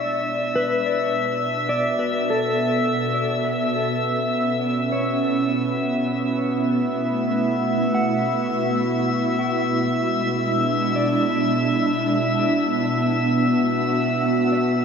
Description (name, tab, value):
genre	ambient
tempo	free time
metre	none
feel	none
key	B dorian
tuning	A4 = 439 Hz
part	ethereal airy pad	sustained chords	0.0-14.8 s	B2 to F#4	-22 LUFS	right 1 dB	ensemble chorus, built-in reverb
part	mellow electric guitar	arpeggios	0.0-14.8 s	A4 to F#5	-28 LUFS	left 1 dB	tremolo, ping-pong delay
part	analog drone	drone	0.0-14.8 s	B3	-28 LUFS	right 1 dB	chorus
part	drifting glass-harmonics texture	texture	0.0-14.8 s	E5 to E6	-24 LUFS	left 1 dB	chorus, built-in reverb
room	wet huge ambient reverb, RT60 7.8 s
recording	none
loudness	-19 LUFS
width	side -6 dB against mid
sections	0.0-14.8 A section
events	fade-in on ambient pad 0.0-14.8; fade-in on synth drone 0.0-14.8; fade-out on clean electric guitar 0.0-14.8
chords	0.1 Bm; 3.0 F#m7/B; 8.8 E7/B; 11.7 Bm